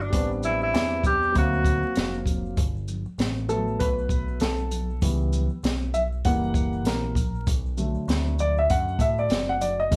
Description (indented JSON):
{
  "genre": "hip hop, jazz-hop",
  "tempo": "98 BPM",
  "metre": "4/4",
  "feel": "swing 60% on 16ths",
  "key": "G major",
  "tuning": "A4 = 440 Hz",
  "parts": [
    { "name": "breathy tenor saxophone", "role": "melody", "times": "0.0-2.2 s", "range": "D4 to G4", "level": "-27 LUFS", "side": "equal", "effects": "none" },
    { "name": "dark baby grand piano", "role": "accompaniment", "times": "0.0-10.0 s", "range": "D3 to F#5", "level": "-29 LUFS", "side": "equal", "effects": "none" },
    { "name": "deep dub picked electric bass", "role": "bass", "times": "0.0-10.0 s", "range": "E#1 to A2", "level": "-30 LUFS", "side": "equal", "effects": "none" },
    { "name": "maracas and congas", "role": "percussion", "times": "0.0-10.0 s", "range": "none", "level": "-42 LUFS", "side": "equal", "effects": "none" },
    { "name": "open jazz drum kit", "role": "drums", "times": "0.1-10.0 s", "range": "hi-hat, kick drum, shaker, snare drum", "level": "-28 LUFS", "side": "equal", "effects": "none" }
  ],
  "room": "moderate studio ambience, RT60 0.5 s",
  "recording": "band playing live in one room, vinyl crackle",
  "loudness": "-25 LUFS",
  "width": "mono",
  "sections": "0.0-2.6 A section; 2.6-10.0 B section",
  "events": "grand piano solo 2.6-10.0",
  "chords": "0.1 Am11; 1.3 D7alt; 2.6 Gmaj9; 5.0 C#m7b5; 6.2 F#7b9; 7.5 Bm7",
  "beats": "| 0.12 0.74 1.35 1.96 | 2.57 3.19 3.80 4.41 | 5.02 5.63 6.25 6.86 | 7.47 8.08 8.70 9.31 | 9.92"
}